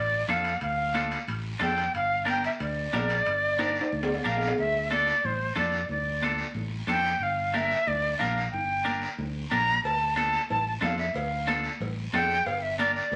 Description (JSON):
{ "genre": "latin, cumbia", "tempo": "182 BPM", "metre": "4/4", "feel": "straight", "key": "D minor", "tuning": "A4 = 440 Hz", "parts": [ { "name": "jazz flute", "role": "melody", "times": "0.0-13.2 s", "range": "C5 to Bb5", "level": "-29 LUFS", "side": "equal", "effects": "none" }, { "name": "fingered electric bass", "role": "bass", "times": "0.0-13.2 s", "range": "G1 to F2", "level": "-36 LUFS", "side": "equal", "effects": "none" }, { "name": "clean electric guitar", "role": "accompaniment", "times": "0.3-13.0 s", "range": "D4 to Bb4", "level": "-33 LUFS", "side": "equal", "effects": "none" }, { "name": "congas", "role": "percussion", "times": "0.3-13.2 s", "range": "none", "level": "-40 LUFS", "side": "equal", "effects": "none" }, { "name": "guiro", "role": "percussion", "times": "0.3-13.2 s", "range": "none", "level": "-43 LUFS", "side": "equal", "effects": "none" }, { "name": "timbales and cowbell", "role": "percussion", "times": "0.3-4.5, 9.9-13.2 s", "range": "none", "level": "-37 LUFS", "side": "equal", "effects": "none" } ], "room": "moderate studio reverb, RT60 0.8 s", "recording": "vinyl crackle, lossy compression artefacts", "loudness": "-27 LUFS", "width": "mono", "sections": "0.0-4.6 A section; 4.6-13.2 A section", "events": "drum fill 3.6-4.6", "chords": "0.0 Dm; 1.9 Gm; 4.6 Dm; 7.2 Gm; 9.8 Dm; 12.5 Gm" }